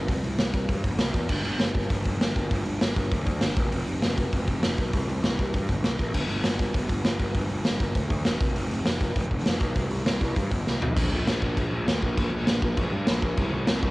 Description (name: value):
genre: punk rock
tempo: 199 BPM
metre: 4/4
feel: straight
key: unclear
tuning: A4 = 440 Hz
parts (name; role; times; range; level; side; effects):
- fuzz picked electric bass; bass; 0.0-13.9 s; E1 to G2; -28 LUFS; equal; overdrive
- raw garage drum kit; drums; 0.1-13.9 s; crash cymbal, hi-hat, kick drum, snare drum, toms; -25 LUFS; equal; cassette tape
room: little or no reverb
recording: home recording on cassette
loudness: -23 LUFS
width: side -21 dB against mid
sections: 0.0-11.0 A section; 11.0-13.9 B section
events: drum fill 10.7-11.0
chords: none